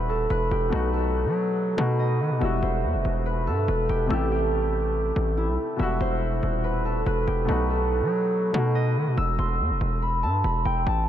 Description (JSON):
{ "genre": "hip hop, drill", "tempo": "142 BPM", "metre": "4/4", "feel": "half-time", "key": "E harmonic minor", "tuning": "A4 = 440 Hz", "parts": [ { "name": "concert harp", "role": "melody", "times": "0.0-11.1 s", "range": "E4 to E6", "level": "-27 LUFS", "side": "equal", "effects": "analog delay" }, { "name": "clear concert grand piano", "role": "accompaniment", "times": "0.0-9.2 s", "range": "B2 to G4", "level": "-31 LUFS", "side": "left 2 dB", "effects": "none" }, { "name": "distorted 808-style bass", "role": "bass", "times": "0.0-11.1 s", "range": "D#1 to F#3", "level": "-25 LUFS", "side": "equal", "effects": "distortion" } ], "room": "moderate huge ambient reverb, RT60 8.7 s", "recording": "dreamy mix soaked in reverb", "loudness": "-22 LUFS", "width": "side -10 dB against mid", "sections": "0.0-9.2 A section; 9.2-11.1 B section", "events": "none", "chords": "0.0 Emadd9; 0.7 B7; 2.4 Emadd9; 4.1 Am7; 5.8 Emadd9; 7.5 B7; 9.2 Em" }